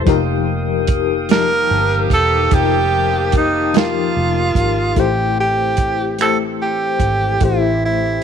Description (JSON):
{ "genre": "slow six-eight R&B", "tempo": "49 BPM (dotted quarters)", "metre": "6/8", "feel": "straight", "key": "unclear", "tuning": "A4 = 440 Hz", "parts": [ { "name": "FM electric piano with tremolo", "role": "accompaniment", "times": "0.0-8.2 s", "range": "F3 to A5", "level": "-20 LUFS", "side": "left 14 dB", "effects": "phaser" }, { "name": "tonewheel organ", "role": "sustained chords", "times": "0.0-8.2 s", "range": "E3 to Eb6", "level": "-27 LUFS", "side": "right 1 dB", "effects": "slow rotary speaker" }, { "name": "vintage muted fingered electric bass", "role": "bass", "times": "0.0-8.2 s", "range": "E1 to A1", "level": "-22 LUFS", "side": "right 1 dB", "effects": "none" }, { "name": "warm soul drum kit", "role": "drums", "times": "0.1-7.6 s", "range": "finger snaps, hi-hat, kick drum, snare drum", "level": "-17 LUFS", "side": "right 4 dB", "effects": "none" }, { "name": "breathy tenor saxophone", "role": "melody", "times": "1.3-8.2 s", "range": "Eb4 to Bb4", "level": "-17 LUFS", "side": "right 2 dB", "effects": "none" }, { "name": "warm horn section", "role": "stabs", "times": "1.3-4.5 s", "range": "Eb3 to G4", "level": "-25 LUFS", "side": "right 14 dB", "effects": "none" } ], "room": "light reverb, studio reverb", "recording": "1960s-style stereo with parts hard left and right", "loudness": "-14 LUFS", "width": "side -7 dB against mid", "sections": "0.0-5.0 A section; 5.0-8.2 B section", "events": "none", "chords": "0.1 F9sus4; 5.0 Am7", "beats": "| 0.07 1.29 | 2.51 3.74 | 4.96 6.19 | 7.41" }